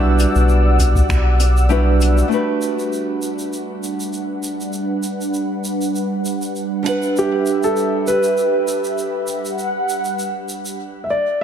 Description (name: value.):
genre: sunset chillout.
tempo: 99 BPM.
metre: 4/4.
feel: swing 55% on 16ths.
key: G major.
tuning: A4 = 440 Hz.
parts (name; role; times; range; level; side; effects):
nylon-string guitar; accompaniment; 0.0-10.8 s; G3 to F#5; -22 LUFS; right 1 dB; auto-pan, analog delay, shimmer reverb.
lush unison pad; sustained chords; 0.0-10.8 s; G3 to E6; -22 LUFS; right 1 dB; chorus, vintage 12-bit sampler grit, shimmer reverb.
round analog bass; bass; 0.0-2.2 s; B1; -14 LUFS; equal; tube saturation.
vintage brush drum kit; drums; 0.2-10.8 s; finger snaps, hi-hat, shaker; -30 LUFS; equal; tape echo.
electronic kick drum; drums; 0.8-1.2 s; none; -19 LUFS; equal; overdrive.
warm concert grand piano; melody; 7.2-11.4 s; G4 to E5; -19 LUFS; right 1 dB; analog delay, shimmer reverb.
room: moderate plate reverb, RT60 1.9 s, small room ambience.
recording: echo-heavy mix.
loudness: -16 LUFS.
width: side -8 dB against mid.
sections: 0.0-2.3 A section; 2.3-11.4 B section.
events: none.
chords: 0.0 Em9; 2.3 Gmaj7; 6.9 Em9.